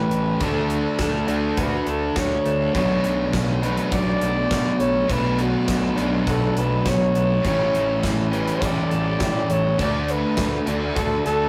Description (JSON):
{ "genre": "rock, shoegaze and dream pop", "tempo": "102 BPM", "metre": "4/4", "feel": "straight", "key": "unclear", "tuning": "A4 = 440 Hz", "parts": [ { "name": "trumpet with bucket mute", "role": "melody", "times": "0.0-11.5 s", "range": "F#4 to D5", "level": "-27 LUFS", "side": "equal", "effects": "none" }, { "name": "electric guitar through a small old amp", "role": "arpeggios", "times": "0.0-11.5 s", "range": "E3 to G4", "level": "-34 LUFS", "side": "equal", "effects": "none" }, { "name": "crunchy overdriven guitar", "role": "riff", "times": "0.0-11.5 s", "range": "A2 to G4", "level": "-27 LUFS", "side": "equal", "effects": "none" }, { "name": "thick fuzz guitar", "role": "riff", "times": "0.0-11.5 s", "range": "A2 to D4", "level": "-28 LUFS", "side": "equal", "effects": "distortion" }, { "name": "growling fingered electric bass", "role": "bass", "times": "0.0-11.5 s", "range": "A1 to B2", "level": "-31 LUFS", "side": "equal", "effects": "overdrive" }, { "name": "gated 80s drum kit", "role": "drums", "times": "0.1-11.4 s", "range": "hi-hat, kick drum, snare drum", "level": "-30 LUFS", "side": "equal", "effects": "none" } ], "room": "wet studio reverb, RT60 0.6 s", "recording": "rough rehearsal-room recording, warm saturation", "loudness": "-21 LUFS", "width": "mono", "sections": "0.0-11.5 A section", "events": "none", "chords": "0.4 Dmaj7; 2.8 Bm7; 7.4 A7sus4; 9.8 D" }